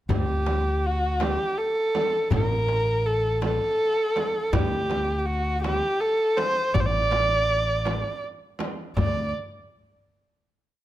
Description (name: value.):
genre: Persian modal ensemble.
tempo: 54 BPM (dotted quarters).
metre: 6/8.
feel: straight.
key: D dastgah homayun.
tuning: A4 = 440 Hz.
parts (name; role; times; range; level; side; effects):
dark kamancheh; melody; 0.1-9.3 s; F#4 to D5; -24 LUFS; right 1 dB; none.
upright bass; bass; 0.1-9.3 s; A1 to D2; -27 LUFS; equal; none.
frame drum; percussion; 0.1-9.3 s; none; -32 LUFS; right 3 dB; none.
tombak; percussion; 0.1-9.3 s; none; -29 LUFS; left 3 dB; none.
room: light reverb.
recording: close, detailed microphones.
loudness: -22 LUFS.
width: side -13 dB against mid.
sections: 0.1-9.0 A section; 9.0-10.8 final note.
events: none.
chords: none.